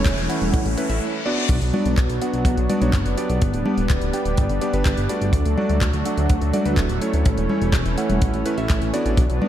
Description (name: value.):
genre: italo disco.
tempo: 125 BPM.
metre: 4/4.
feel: straight.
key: unclear.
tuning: A4 = 440 Hz.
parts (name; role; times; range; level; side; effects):
lush unison pad; sustained chords; 0.0-9.5 s; E3 to D4; -26 LUFS; right 1 dB; chorus.
chorused synth bass; bass; 0.0-9.4 s; D1 to D2; -22 LUFS; equal; none.
riser and reverse cymbal; sound effects; 0.0-1.5 s; none; -30 LUFS; left 4 dB; none.
house drum kit; drums; 0.1-9.5 s; congas, crash cymbal, handclaps, hi-hat; -27 LUFS; left 2 dB; small room ambience.
kick drum; drums; 0.1-9.3 s; none; -21 LUFS; equal; small room ambience.
bright electric grand piano; stabs; 0.3-9.5 s; A3 to G5; -26 LUFS; right 1 dB; digital delay.
room: light reverb.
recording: dark, warm production.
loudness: -18 LUFS.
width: side -11 dB against mid.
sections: 0.0-1.5 A section; 1.5-9.5 B section.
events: riser 0.0-1.0; reverse cymbal 0.5-1.5.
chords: 0.0 A; 1.5 Bm; 3.4 G; 5.3 D; 7.3 A.